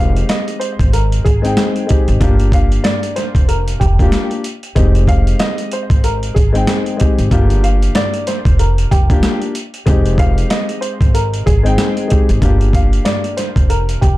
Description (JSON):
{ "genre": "hip hop, boom-bap hip-hop", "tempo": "94 BPM", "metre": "4/4", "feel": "swing 59% on 16ths", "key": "F dorian", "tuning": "A4 = 438 Hz", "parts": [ { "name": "warm upright piano", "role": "melody", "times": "0.0-14.2 s", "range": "G4 to F5", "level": "-22 LUFS", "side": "right 1 dB", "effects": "high-pass filter, low-pass filter, ping-pong delay" }, { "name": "dark concert grand piano", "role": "accompaniment", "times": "0.0-14.1 s", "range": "Ab3 to G5", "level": "-21 LUFS", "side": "left 3 dB", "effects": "cassette tape, high-pass filter, low-pass filter" }, { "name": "upright bass", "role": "bass", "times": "0.0-14.2 s", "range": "F1 to Ab1", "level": "-15 LUFS", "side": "equal", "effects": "none" }, { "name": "dusty soul sampler-style drum kit", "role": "drums", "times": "0.2-14.2 s", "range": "hi-hat, kick drum, snare drum", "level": "-15 LUFS", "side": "equal", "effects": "none" } ], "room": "little or no reverb", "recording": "dark, warm production", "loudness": "-12 LUFS", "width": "side -17 dB against mid", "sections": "0.0-14.2 A section", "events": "none", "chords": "0.0 Fm7 (rootless); 2.2 Gm7; 4.8 Fm7; 7.3 Gm7; 9.9 Fm7; 12.4 Gm7", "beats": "0.29 0.93 1.57 | 2.21 2.85 3.48 4.12 | 4.76 5.40 6.04 6.68 | 7.32 7.95 8.59 9.23 | 9.87 10.51 11.14 11.78 | 12.42 13.06 13.70" }